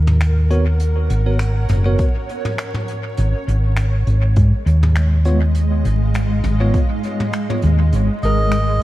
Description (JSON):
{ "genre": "ambient dub", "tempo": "101 BPM", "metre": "4/4", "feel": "swing 55% on 16ths", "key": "G# dorian", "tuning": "A4 = 440 Hz", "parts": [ { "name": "granular cloud pad", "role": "sustained chords", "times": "0.1-8.8 s", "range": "G#3 to F#5", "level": "-25 LUFS", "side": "equal", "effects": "built-in reverb" }, { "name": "hollow-body short-scale fingered electric bass", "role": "bass", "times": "0.0-8.8 s", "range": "F#1 to G#2", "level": "-15 LUFS", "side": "equal", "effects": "none" }, { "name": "vintage brush drum kit", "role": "drums", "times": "0.1-8.7 s", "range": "finger snaps, hi-hat, toms", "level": "-27 LUFS", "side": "left 1 dB", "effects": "dub echo" }, { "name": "bell-like tine electric piano", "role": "stabs", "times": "0.5-7.6 s", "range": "B3 to C#5", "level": "-26 LUFS", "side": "right 1 dB", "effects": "medium stereo tremolo, dub echo" }, { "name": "electronic kick drum", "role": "drums", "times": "2.0-6.9 s", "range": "none", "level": "-17 LUFS", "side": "equal", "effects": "none" }, { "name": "melodica", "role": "melody", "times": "8.2-8.8 s", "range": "D#5", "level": "-20 LUFS", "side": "right 2 dB", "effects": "none" }, { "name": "felt-muted upright piano", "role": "arpeggios", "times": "8.2-8.8 s", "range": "G#3 to A#4", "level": "-25 LUFS", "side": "left 3 dB", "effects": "none" } ], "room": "small room ambience", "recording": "vinyl crackle", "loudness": "-15 LUFS", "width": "side -16 dB against mid", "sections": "0.0-8.8 A section", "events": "none", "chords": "0.0 G#m11; 3.2 C#/G#; 7.9 G#sus2", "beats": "0.21 | 0.80 1.40 1.99 2.58 | 3.18 3.77 4.37 4.96 | 5.55 6.15 6.74 7.34 | 7.93 8.52" }